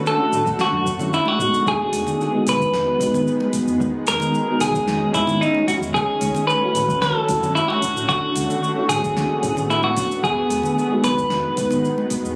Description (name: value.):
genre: sunset chillout.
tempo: 112 BPM.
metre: 4/4.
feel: straight.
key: E major.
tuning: A4 = 440 Hz.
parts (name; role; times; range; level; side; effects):
mellow FM electric piano; accompaniment; 0.0-12.4 s; G#3 to F#4; -28 LUFS; equal; chorus, low-pass filter.
shimmering ambient pad; sustained chords; 0.0-12.4 s; D3 to F#4; -28 LUFS; equal; chorus, built-in reverb.
clean electric guitar; melody; 0.1-12.1 s; D#4 to B4; -22 LUFS; equal; delay.
smooth R&B drum kit; drums; 0.1-12.4 s; hi-hat, shaker, snare drum; -34 LUFS; equal; none.
fingered electric bass; bass; 0.3-12.3 s; E1 to F#2; -33 LUFS; equal; none.
congas; percussion; 0.3-12.1 s; none; -32 LUFS; equal; none.
electronic kick drum; drums; 0.5-12.2 s; none; -33 LUFS; equal; none.
room: moderate plate reverb, RT60 1.7 s.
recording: recorded on a phone in the room, club reverb, compression.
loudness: -20 LUFS.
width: mono.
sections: 0.0-12.4 A section.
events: none.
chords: 0.0 Dmaj7; 1.7 Emaj7; 5.9 Dmaj7; 10.2 Emaj7.